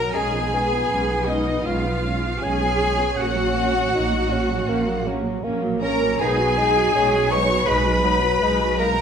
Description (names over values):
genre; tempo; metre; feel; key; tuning
classical, slow romantic movement for symphony orchestra; 80 BPM; 4/4; rubato; F# major; A4 = 439 Hz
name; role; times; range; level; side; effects
rich studio violin section; melody; 0.0-9.0 s; D#5 to C#6; -30 LUFS; left 5 dB; none
clear oboe; second line; 0.0-9.0 s; D#5 to C#6; -30 LUFS; equal; none
rich chamber violin section; second line; 0.0-9.0 s; D#5 to C#6; -28 LUFS; left 3 dB; none
silver concert flute; second line; 0.0-9.0 s; D#5 to C#6; -29 LUFS; left 5 dB; none
mellow bassoon; accompaniment; 0.0-9.0 s; F#3 to D#4; -27 LUFS; right 1 dB; none
rich chamber viola section; accompaniment; 0.0-9.0 s; E#3 to F#4; -27 LUFS; right 2 dB; none
mellow French horn section; sustained chords; 0.0-9.0 s; D#4 to C#5; -27 LUFS; left 3 dB; none
clear chamber cello section; bass; 0.0-9.0 s; D#4 to C#5; -26 LUFS; right 2 dB; none
rich symphonic double bass section; bass; 0.0-9.0 s; A#1 to B1; -26 LUFS; right 2 dB; none
room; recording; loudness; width
moderate scoring stage reverb, RT60 1.7 s; none; -18 LUFS; side -7 dB against mid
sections
0.0-9.0 A section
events
none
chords
0.2 C#7/B; 3.2 F#/A#; 6.2 G#m7/B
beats
| 0.16 0.91 1.66 2.43 | 3.19 3.95 4.69 5.46 | 6.21 6.96 7.68 8.43